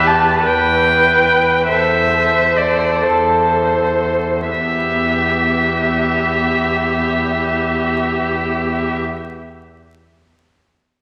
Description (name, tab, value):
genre	classical, slow romantic movement for string quartet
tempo	37-53 BPM (dotted quarters)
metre	6/8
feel	rubato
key	E minor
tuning	A4 = 440 Hz
part	muted violin	melody	0.0-9.0 s	C5 to A5	-19 LUFS	equal	none
part	muted violin	second line	0.0-9.0 s	G4 to C5	-22 LUFS	equal	none
part	muted viola	accompaniment	0.0-9.0 s	B3 to B4	-24 LUFS	equal	none
part	muted cello	bass	0.0-9.0 s	E2	-25 LUFS	equal	none
room	wet scoring stage reverb, RT60 1.6 s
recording	vinyl crackle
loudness	-16 LUFS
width	mono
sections	0.0-4.5 A section; 4.5-9.9 B section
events	slowing down 0.0-4.5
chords	0.0 Em; 1.7 Am/E; 4.5 Em